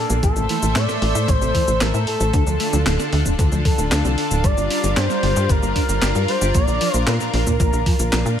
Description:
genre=synthwave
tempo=114 BPM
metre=4/4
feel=straight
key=D minor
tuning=A4 = 440 Hz
part: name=expressive synth lead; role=melody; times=0.0-8.4 s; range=A4 to D5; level=-24 LUFS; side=equal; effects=lush chorus, ping-pong delay
part: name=lush unison pad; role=sustained chords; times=0.0-8.4 s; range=D3 to E5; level=-25 LUFS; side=equal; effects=chorus, sidechain pumping
part: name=mellow electric guitar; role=riff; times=0.0-8.3 s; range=A2 to G4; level=-28 LUFS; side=right 1 dB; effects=ensemble chorus, tape echo
part: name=tight sequencer bass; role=bass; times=0.1-8.4 s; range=D1 to Bb2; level=-20 LUFS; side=equal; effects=none
part: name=clean 12-bit digital drum machine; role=drums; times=0.1-8.4 s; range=handclaps, hi-hat, shaker, snare drum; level=-25 LUFS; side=equal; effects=none
part: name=electronic kick drum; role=drums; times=0.2-8.0 s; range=none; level=-19 LUFS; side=equal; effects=none
room=digital ambience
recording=none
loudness=-16 LUFS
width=side -9 dB against mid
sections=0.0-8.4 A section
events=none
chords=0.2 Am; 2.3 Dm; 4.4 Gm7; 6.5 Bb

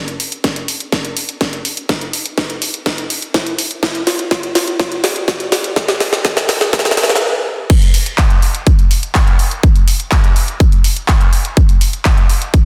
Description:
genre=house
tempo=124 BPM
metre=4/4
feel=straight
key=none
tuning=none
part: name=house drum kit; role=drums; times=0.1-12.6 s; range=crash cymbal, handclaps, hi-hat, snare drum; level=-19 LUFS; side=equal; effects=overdrive, high-pass filter on hats, high-pass filter on snare, high-pass filter on cymbals, high-pass filter on room
part: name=electronic kick drum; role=drums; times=0.4-12.6 s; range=none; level=-14 LUFS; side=equal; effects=high-pass filter on kick
room=moderate lush hall reverb, RT60 2.0 s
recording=dense, heavily limited modern master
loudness=-15 LUFS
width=mono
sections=0.0-7.7 A section; 7.7-12.7 B section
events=build-up 0.0-7.7; drum fill 0.0-7.2; stop 7.2-7.7; drop 7.7-12.7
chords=none

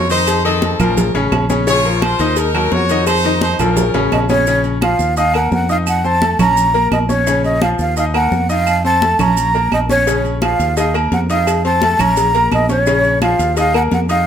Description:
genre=latin, salsa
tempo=171 BPM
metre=4/4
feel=straight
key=Bb harmonic minor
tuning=A4 = 440 Hz
part: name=brilliant horn section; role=melody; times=0.0-4.3 s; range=C4 to Db5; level=-17 LUFS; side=left 1 dB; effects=none
part: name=bright upright piano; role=accompaniment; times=0.0-14.3 s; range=Db3 to Eb6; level=-19 LUFS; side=left 4 dB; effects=none
part: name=fingered electric bass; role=bass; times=0.0-14.3 s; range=A1 to F2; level=-19 LUFS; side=right 1 dB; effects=none
part: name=congas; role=percussion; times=0.1-14.3 s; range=none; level=-22 LUFS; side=right 1 dB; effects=none
part: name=cowbell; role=percussion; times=0.1-4.3, 10.1-14.3 s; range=none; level=-24 LUFS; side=left 6 dB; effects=none
part: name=maracas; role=percussion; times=0.1-14.3 s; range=none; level=-31 LUFS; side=right 7 dB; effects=none
part: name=agogo bells and timbales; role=percussion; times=0.3-13.9 s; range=none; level=-24 LUFS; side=right 4 dB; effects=none
part: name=claves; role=percussion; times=0.3-13.9 s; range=none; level=-29 LUFS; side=right 10 dB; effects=none
part: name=breathy mellow silver concert flute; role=melody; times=4.1-14.3 s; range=Db5 to Bb5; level=-16 LUFS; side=right 1 dB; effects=none
room=light reverb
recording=none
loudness=-12 LUFS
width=side -8 dB against mid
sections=0.0-4.5 A section; 4.5-14.3 B section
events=drum fill 3.6-4.5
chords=0.3 F7; 1.0 Bbm; 2.4 Ebm; 3.1 F5; 3.8 Bbm; 5.2 Eb5; 5.9 F7; 6.6 Bbm; 8.0 Ebm; 8.7 F7; 9.4 Bbm; 10.8 Eb5; 11.5 F7; 12.2 Bbm; 13.6 Eb5

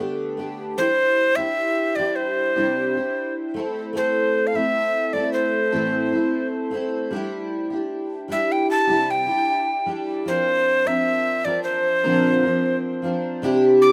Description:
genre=pop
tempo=76 BPM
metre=4/4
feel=straight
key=C major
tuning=A4 = 439 Hz
part: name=picked steel-string acoustic guitar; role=accompaniment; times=0.0-13.9 s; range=A2 to Bb4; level=-25 LUFS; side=equal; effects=double-tracked
part: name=breathy alto recorder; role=melody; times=0.8-13.9 s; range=C5 to D6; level=-24 LUFS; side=equal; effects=digital delay
room=light reverb, small room ambience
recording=rough home demo mix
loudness=-22 LUFS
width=mono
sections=0.8-13.4 A section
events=none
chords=0.0 Gadd9; 0.8 Cadd9; 3.5 Am; 7.1 Cadd9; 10.3 Bbadd9; 13.4 Cadd9

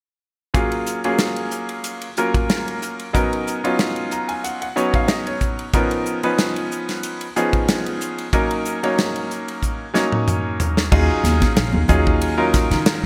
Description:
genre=electric jazz fusion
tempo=92 BPM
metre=4/4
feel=swing 54% on 16ths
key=Eb minor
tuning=A4 = 440 Hz
part: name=bright grand piano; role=accompaniment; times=0.5-13.1 s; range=F3 to A#5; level=-23 LUFS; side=equal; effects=none
part: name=modern studio drum kit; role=drums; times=0.5-13.1 s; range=crash cymbal, hi-hat, kick drum, ride cymbal, snare drum, toms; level=-24 LUFS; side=equal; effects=none
part: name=upright bass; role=bass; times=10.9-13.1 s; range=Bb1 to Eb3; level=-22 LUFS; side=equal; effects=none
part: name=congas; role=percussion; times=11.2-12.0 s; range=none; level=-28 LUFS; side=equal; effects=none
room=moderate plate reverb, RT60 1.6 s, studio reverb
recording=bright 1980s-style digital production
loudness=-20 LUFS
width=mono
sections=0.5-10.9 A section; 10.9-13.1 B section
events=grand piano fill 3.8-5.7; drum fill 9.6-10.9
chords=0.5 Ab13sus4; 3.1 Bmaj9; 5.7 Db13; 8.3 Ebm7; 10.9 Ebm11

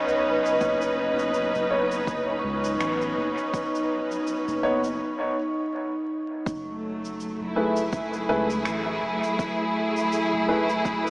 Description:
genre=ambient dub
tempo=82 BPM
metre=4/4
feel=swing 57% on 16ths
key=F# dorian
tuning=A4 = 440 Hz
part: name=rich symphonic string section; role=sustained chords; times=0.0-11.1 s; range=F#3 to B4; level=-26 LUFS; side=equal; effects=none
part: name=vibraphone with soft mallets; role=arpeggios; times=0.0-6.5 s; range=D#4 to C#6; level=-29 LUFS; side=equal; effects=diffuse ambient delay
part: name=shaker and finger snaps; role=drums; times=0.1-11.1 s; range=none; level=-39 LUFS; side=equal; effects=dub echo
part: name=soft dub sub bass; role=bass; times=0.6-11.1 s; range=F#1 to C#2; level=-36 LUFS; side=equal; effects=none
part: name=electronic kick drum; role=drums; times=0.6-11.0 s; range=none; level=-31 LUFS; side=equal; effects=overdrive
part: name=warm upright piano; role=stabs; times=1.7-10.7 s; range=A3 to C#5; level=-29 LUFS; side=equal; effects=dub echo
room=wet huge ambient reverb, RT60 5.1 s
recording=dreamy mix soaked in reverb, vinyl crackle, small speaker sound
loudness=-23 LUFS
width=side -25 dB against mid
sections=0.0-6.5 A section; 6.5-11.1 A section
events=break 5.0-6.5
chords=0.0 Badd9/F#; 6.5 F#m11

